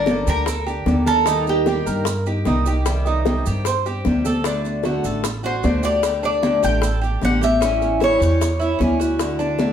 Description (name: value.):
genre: latin, Cuban son and guajira.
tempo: 151 BPM.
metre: 4/4.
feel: straight.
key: unclear.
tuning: A4 = 439 Hz.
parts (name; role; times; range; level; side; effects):
Cuban tres; melody; 0.0-2.0, 5.5-9.0 s; G4 to G5; -21 LUFS; equal; none.
picked old ladder-braced acoustic guitar; accompaniment; 0.0-9.7 s; C3 to A4; -25 LUFS; left 2 dB; none.
Cuban tres; arpeggios; 0.0-9.7 s; C#4 to C5; -26 LUFS; right 4 dB; none.
upright bass; bass; 0.0-9.7 s; G1 to G2; -23 LUFS; right 1 dB; none.
bongos; percussion; 0.1-9.7 s; none; -27 LUFS; left 5 dB; none.
congas; percussion; 0.1-9.7 s; none; -24 LUFS; left 1 dB; none.
maracas; percussion; 0.1-9.7 s; none; -35 LUFS; right 7 dB; none.
room: wet studio reverb, RT60 0.8 s.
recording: heard from further back in the room.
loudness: -17 LUFS.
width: side -8 dB against mid.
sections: 0.0-9.7 A section.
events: none.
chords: 0.0 Gmadd9; 1.3 Eb; 2.9 Cm; 4.4 D; 6.0 Dsus4; 7.6 A7; 9.2 D.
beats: 0.08 0.47 0.87 | 1.27 1.67 2.06 2.46 | 2.86 3.26 3.65 4.05 | 4.45 4.84 5.24 5.64 | 6.03 6.43 6.83 7.22 | 7.62 8.01 8.41 8.80 | 9.20 9.60.